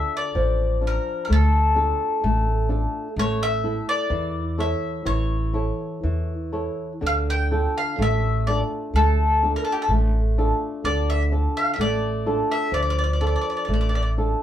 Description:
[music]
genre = fado-style ballad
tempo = 63 BPM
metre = 2/4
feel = rubato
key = D harmonic minor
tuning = A4 = 438 Hz
[part]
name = bowl-back mandolin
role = melody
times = 0.0-14.1 s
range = G4 to G5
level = -24 LUFS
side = left 2 dB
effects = none
[part]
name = flamenco guitar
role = accompaniment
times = 0.0-14.4 s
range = D3 to E5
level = -26 LUFS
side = equal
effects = none
[part]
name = upright bass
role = bass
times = 0.3-14.3 s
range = A1 to E2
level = -22 LUFS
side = right 1 dB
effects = none
[sound]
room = wet studio ambience, RT60 0.5 s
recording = band playing live in one room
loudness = -20 LUFS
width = side -11 dB against mid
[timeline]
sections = 0.0-14.4 A section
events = none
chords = 0.0 Dm; 3.2 A; 7.0 Dm

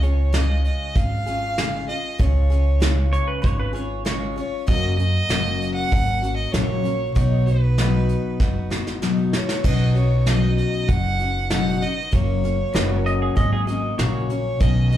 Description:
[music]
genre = honky-tonk and classic country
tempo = 97 BPM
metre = 4/4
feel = straight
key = B lydian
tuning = A4 = 440 Hz
[part]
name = rich fiddle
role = melody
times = 0.0-15.0 s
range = B4 to F#5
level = -27 LUFS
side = right 2 dB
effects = slapback echo
[part]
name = picked steel-string acoustic guitar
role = accompaniment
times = 0.0-15.0 s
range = F#2 to G#4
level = -26 LUFS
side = left 4 dB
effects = slapback echo
[part]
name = upright bass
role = bass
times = 0.0-15.0 s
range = F#1 to F#2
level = -21 LUFS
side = equal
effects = none
[part]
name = soft brush drum kit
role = drums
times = 0.0-15.0 s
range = crash cymbal, hi-hat, kick drum, snare drum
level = -23 LUFS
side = equal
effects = none
[part]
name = pedal steel guitar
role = second line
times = 3.1-4.4, 13.1-14.3 s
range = G#4 to D#5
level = -27 LUFS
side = right 2 dB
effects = slapback echo
[part]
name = pedal steel guitar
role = sustained chords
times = 9.7-14.6 s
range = A#4 to F#5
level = -36 LUFS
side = equal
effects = none
[sound]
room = light reverb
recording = live gig heard through the venue's PA, club reverb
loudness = -18 LUFS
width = side -12 dB against mid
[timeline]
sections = 0.0-9.6 A section; 9.6-15.0 A section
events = drum fill 8.4-9.6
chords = 0.0 C#; 4.7 F#; 7.2 B; 9.6 Badd9; 12.1 F#

